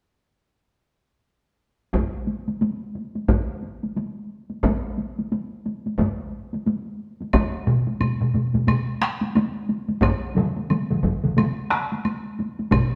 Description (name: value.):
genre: japanese traditional, taiko drum ensemble.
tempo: 89 BPM.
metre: 4/4.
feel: swing 60% on 16ths.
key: none.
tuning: none.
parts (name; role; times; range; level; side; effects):
taiko ensemble; percussion; 1.9-12.9 s; none; -28 LUFS; equal; none.
taiko ensemble; percussion; 1.9-12.9 s; none; -26 LUFS; equal; none.
woodblock; percussion; 7.3-12.9 s; none; -35 LUFS; equal; none.
taiko ensemble; percussion; 7.7-12.9 s; none; -24 LUFS; equal; none.
taiko ensemble; percussion; 10.4-11.9 s; none; -25 LUFS; equal; none.
room: wet stone room reverb, RT60 1.4 s.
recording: band playing live in one room.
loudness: -24 LUFS.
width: mono.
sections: 1.9-7.3 A section; 7.3-13.0 B section.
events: none.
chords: none.